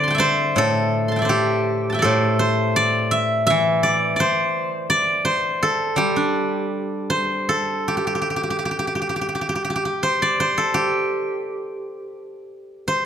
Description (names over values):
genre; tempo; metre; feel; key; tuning
chinese traditional, Chinese solo plucked strings; 77-86 BPM; 2/4; rubato; G zhi mode; A4 = 440 Hz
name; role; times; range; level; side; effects
steel-string zither; solo; 0.0-13.1 s; A2 to C6; -18 LUFS; equal; none
room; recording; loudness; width
moderate recital hall reverb, RT60 1.5 s; dark, warm production; -18 LUFS; side -8 dB against mid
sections
0.0-7.9 A section; 7.9-13.1 B section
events
none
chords
none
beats
| 0.58 1.32 | 2.07 2.80 | 3.52 4.22 | 4.92 5.63 | 6.36 7.11 | 7.89 8.63 | 9.35 10.06 | 10.76 11.46 | 12.16 12.88